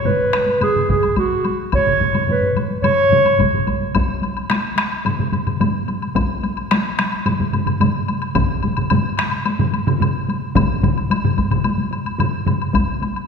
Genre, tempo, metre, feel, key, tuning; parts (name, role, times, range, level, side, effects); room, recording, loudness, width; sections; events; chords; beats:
japanese traditional, taiko drum ensemble; 109 BPM; 4/4; straight; A4 = 440 Hz
mellow clarinet; melody; 0.0-3.6 s; F#4 to C#5; -16 LUFS; right 2 dB
solo taiko drums; percussion; 0.0-12.6 s; -24 LUFS; left 5 dB
solo taiko drums; percussion; 0.1-12.6 s; -23 LUFS; right 4 dB
taiko ensemble; percussion; 0.1-13.2 s; -23 LUFS; left 2 dB
woodblock; percussion; 0.3-13.3 s; -26 LUFS; left 4 dB
taiko ensemble; percussion; 0.9-12.9 s; -24 LUFS; left 1 dB
wet scoring stage reverb, RT60 1.8 s; minimal, uncompressed stereo recording; -16 LUFS; side -6 dB against mid
0.0-3.9 A section; 3.9-13.3 B section
0.07 0.62 1.18 | 1.73 2.29 2.84 3.40 | 3.95 4.50 5.05 5.61 | 6.16 6.71 7.26 7.81 | 8.36 8.91 9.46 10.01 | 10.56 11.11 11.65 12.20 | 12.75